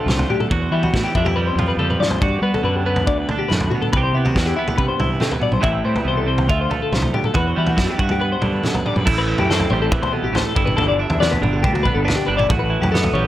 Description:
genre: math rock and midwest emo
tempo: 140 BPM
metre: 4/4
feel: straight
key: G major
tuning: A4 = 439 Hz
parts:
  - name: twelve-string electric guitar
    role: accompaniment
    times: 0.0-13.3 s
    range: D2 to G4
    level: -23 LUFS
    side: right 5 dB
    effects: none
  - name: twelve-string electric guitar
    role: arpeggios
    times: 0.0-13.3 s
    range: E4 to E5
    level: -22 LUFS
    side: left 6 dB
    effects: lush chorus
  - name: fuzz fingered electric bass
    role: bass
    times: 0.1-13.3 s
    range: G1 to G3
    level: -22 LUFS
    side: equal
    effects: overdrive
  - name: loose indie drum kit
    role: drums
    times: 0.1-13.2 s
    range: crash cymbal, kick drum, snare drum, toms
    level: -22 LUFS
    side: equal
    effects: none
room: little or no reverb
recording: none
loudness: -16 LUFS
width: side -13 dB against mid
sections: 0.0-9.1 A section; 9.1-13.3 B section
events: drum fill 1.8-2.2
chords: 0.0 Dm7; 0.5 Em9; 1.1 Fmaj7sus2; 2.2 Gmaj7; 3.9 Cmaj7; 5.6 Am7; 6.5 Dm9; 7.4 Emadd9; 8.0 Gmaj7; 9.1 Am7; 10.6 G69; 12.5 A13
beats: 0.08 | 0.50 0.93 1.36 1.79 | 2.21 2.64 3.07 3.50 | 3.93 4.36 4.78 5.21 | 5.64 6.07 6.50 6.93 | 7.36 7.79 8.21 8.64 | 9.07 9.50 9.93 10.36 | 10.79 11.21 11.64 12.07 | 12.50 12.93

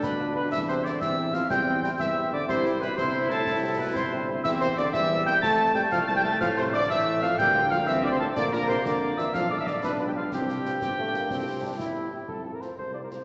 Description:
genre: military-style march for wind band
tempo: 122 BPM (dotted quarters)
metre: 6/8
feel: straight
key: C major, F major from 4.4 s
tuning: A4 = 440 Hz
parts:
  - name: dark cornet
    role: melody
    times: 0.0-13.2 s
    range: F4 to A5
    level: -30 LUFS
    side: equal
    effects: none
  - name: bright wooden piccolo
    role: second line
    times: 0.0-12.1 s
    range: F5 to A6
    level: -32 LUFS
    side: equal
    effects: none
  - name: mellow euphonium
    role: second line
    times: 0.0-12.1 s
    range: F2 to A3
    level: -36 LUFS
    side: equal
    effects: none
  - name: warm trombone section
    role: sustained chords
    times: 0.0-12.2 s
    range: G3 to E4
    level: -34 LUFS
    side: equal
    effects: none
  - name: warm tuba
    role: bass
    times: 0.0-13.2 s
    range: G1 to A2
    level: -37 LUFS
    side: equal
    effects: none
  - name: concert snare drum, concert bass drum and clash cymbals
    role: drums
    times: 0.0-13.2 s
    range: none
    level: -41 LUFS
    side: equal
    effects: none
  - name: dark French horn section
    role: accompaniment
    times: 0.2-13.2 s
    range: G3 to A4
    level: -42 LUFS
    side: equal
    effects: none
room: wet scoring stage reverb, RT60 2.0 s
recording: nothing above 8.0 kHz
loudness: -26 LUFS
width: mono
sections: 0.0-12.3 A section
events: none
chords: 0.0 G7/D; 0.5 C/E; 2.5 C; 4.4 C7/E; 5.4 F; 6.4 Dm9/A; 7.4 Bb/D; 8.4 Bb; 9.3 Bdim7; 10.3 Csus4; 11.3 C; 12.3 F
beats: 0.03 | 0.52 1.01 | 1.50 1.99 | 2.48 2.97 | 3.46 3.95 | 4.44 4.93 | 5.42 5.91 | 6.40 6.89 | 7.38 7.87 | 8.36 8.85 | 9.34 9.83 | 10.32 10.81 | 11.30 11.79 | 12.28 12.77

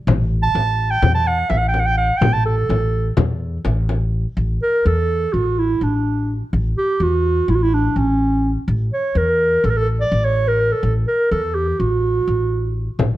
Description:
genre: Turkish makam ensemble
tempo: 250 BPM (eighths)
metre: 9/8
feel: straight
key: A makam hicaz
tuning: A4 = 439 Hz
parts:
  - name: upright bass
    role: bass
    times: 0.1-13.2 s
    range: A1 to E2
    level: -19 LUFS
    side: equal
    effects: none
  - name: frame drum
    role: percussion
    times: 0.1-4.0, 13.0-13.1 s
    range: none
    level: -21 LUFS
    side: left 3 dB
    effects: none
  - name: mellow clarinet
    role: melody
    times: 0.4-12.8 s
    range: C#4 to A5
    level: -18 LUFS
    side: right 2 dB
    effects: slapback echo, plate reverb
room: light reverb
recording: dark, warm production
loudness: -16 LUFS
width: side -15 dB against mid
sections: 0.0-4.4 A section; 4.4-13.2 B section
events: none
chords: none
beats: | 0.07 0.31 0.55 0.79 1.02 1.26 1.50 1.74 1.98 | 2.22 2.46 2.70 2.94 3.17 3.41 3.65 3.89 4.13 | 4.37 4.61 4.85 5.09 5.33 5.57 5.81 6.05 6.29 | 6.53 6.76 7.00 7.25 7.48 7.72 7.96 8.20 8.44 | 8.68 8.92 9.16 9.40 9.64 9.88 10.12 10.36 10.60 | 10.84 11.08 11.32 11.56 11.80 12.04 12.28 12.52 12.76 | 12.99

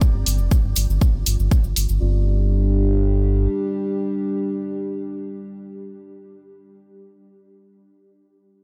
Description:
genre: melodic techno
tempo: 120 BPM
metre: 4/4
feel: straight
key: unclear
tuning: A4 = 442 Hz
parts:
  - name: dark analog pad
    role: sustained chords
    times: 0.0-6.7 s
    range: G3 to D5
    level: -29 LUFS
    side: equal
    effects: chorus, sidechain pumping
  - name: electronic kick drum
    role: drums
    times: 0.0-1.6 s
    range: none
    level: -19 LUFS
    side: equal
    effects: none
  - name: cabasa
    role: percussion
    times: 0.0-2.0 s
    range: none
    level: -32 LUFS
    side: equal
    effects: none
  - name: round analog bass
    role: bass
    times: 0.1-3.5 s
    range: F1 to G1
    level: -21 LUFS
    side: equal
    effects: sidechain pumping
  - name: electronic hi-hat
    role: drums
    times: 0.3-1.9 s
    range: none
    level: -26 LUFS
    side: equal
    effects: none
room: light reverb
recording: none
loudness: -20 LUFS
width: mono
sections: 0.0-2.0 A section; 2.0-6.0 B section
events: filter sweep on analog synth bass 0.0-2.0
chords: 0.0 C5; 2.0 G5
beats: | 0.01 0.51 1.01 1.51 | 2.01 2.51 3.01 3.51 | 4.01 4.51 5.01 5.51

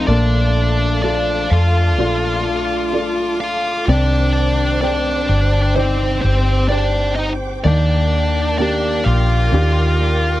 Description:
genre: pop ballad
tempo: 64 BPM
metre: 4/4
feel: straight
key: Bb major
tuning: A4 = 438 Hz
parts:
  - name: bluesy overdriven lead guitar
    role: melody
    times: 0.0-10.4 s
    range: C4 to F5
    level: -20 LUFS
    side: equal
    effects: distortion
  - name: felt-muted upright piano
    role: accompaniment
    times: 0.0-10.4 s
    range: Eb3 to G5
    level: -24 LUFS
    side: right 1 dB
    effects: none
  - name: warm studio string section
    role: sustained chords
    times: 0.0-10.4 s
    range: A4 to D6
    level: -28 LUFS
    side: right 2 dB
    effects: none
  - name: direct-recorded clean electric guitar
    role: arpeggios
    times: 0.0-10.4 s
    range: Bb2 to G4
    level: -25 LUFS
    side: left 9 dB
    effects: lush chorus
  - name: vintage muted fingered electric bass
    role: bass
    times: 0.0-10.4 s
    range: G1 to F2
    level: -17 LUFS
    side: equal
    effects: none
room: light reverb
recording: dry, close 1970s-style studio recording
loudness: -14 LUFS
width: side -15 dB against mid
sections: 0.1-10.4 A section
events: none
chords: 0.1 Bbmaj7; 3.9 Cmadd9; 7.6 Ebmaj7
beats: | 0.08 1.04 1.99 2.94 | 3.88 4.82 5.76 6.70 | 7.64 8.58 9.52

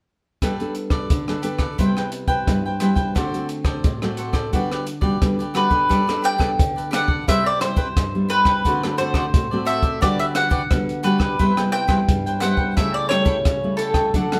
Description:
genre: samba and choro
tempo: 88 BPM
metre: 4/4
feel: straight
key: G major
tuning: A4 = 442 Hz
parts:
  - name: cavaquinho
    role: accompaniment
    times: 0.4-14.4 s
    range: D4 to G5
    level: -30 LUFS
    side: equal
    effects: none
  - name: nylon-string guitar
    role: accompaniment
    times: 0.4-14.4 s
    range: G2 to A4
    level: -26 LUFS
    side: equal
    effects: none
  - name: compact cocktail drum kit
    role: drums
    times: 0.4-14.4 s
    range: hi-hat, kick drum, rim click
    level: -24 LUFS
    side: equal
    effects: none
  - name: mandolin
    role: melody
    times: 5.6-14.4 s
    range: A4 to G5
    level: -23 LUFS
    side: equal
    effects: none
room: moderate studio reverb, RT60 0.8 s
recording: band playing live in one room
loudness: -20 LUFS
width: mono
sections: 0.4-5.9 A section; 5.9-14.4 B section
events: none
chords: 0.4 Gadd9; 1.8 Cmaj7; 3.2 D7; 4.5 Gmaj7/D; 5.9 Gadd9; 7.3 Cmaj7; 8.6 D7; 10.0 Gmaj7/D; 11.4 Cmaj7; 12.8 A7/C#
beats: | 0.42 1.11 1.79 2.48 | 3.16 3.85 4.53 5.22 | 5.91 6.59 7.28 7.96 | 8.65 9.33 10.02 10.71 | 11.39 12.08 12.77 13.45 | 14.14

